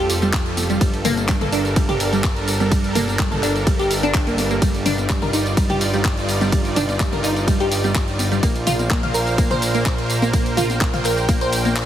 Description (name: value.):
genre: progressive house.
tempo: 126 BPM.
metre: 4/4.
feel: straight.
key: Bb major.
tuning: A4 = 439 Hz.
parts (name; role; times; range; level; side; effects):
supersaw pad; sustained chords; 0.0-11.9 s; F3 to G5; -25 LUFS; right 2 dB; sidechain pumping.
fat analog bass; bass; 0.0-11.9 s; F1 to Bb1; -24 LUFS; equal; sidechain pumping.
house drum kit; drums; 0.1-11.9 s; handclaps, hi-hat, ride cymbal, tambourine; -25 LUFS; equal; none.
glassy wavetable pluck; arpeggios; 0.2-11.7 s; G3 to F5; -22 LUFS; right 1 dB; chorus, sidechain pumping, ping-pong delay.
electronic congas and toms; percussion; 0.2-11.7 s; none; -28 LUFS; left 3 dB; overdrive, sidechain pumping on toms, sidechain pumping on perc.
electronic kick drum; drums; 0.3-11.4 s; none; -20 LUFS; equal; none.
room: light reverb, digital ambience.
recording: heavily compressed radio sound.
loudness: -17 LUFS.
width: side -11 dB against mid.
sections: 0.0-11.9 A section.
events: none.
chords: 0.0 Fadd9; 0.8 Gmadd9; 4.6 Ebmaj7/G; 8.4 Bbsus2.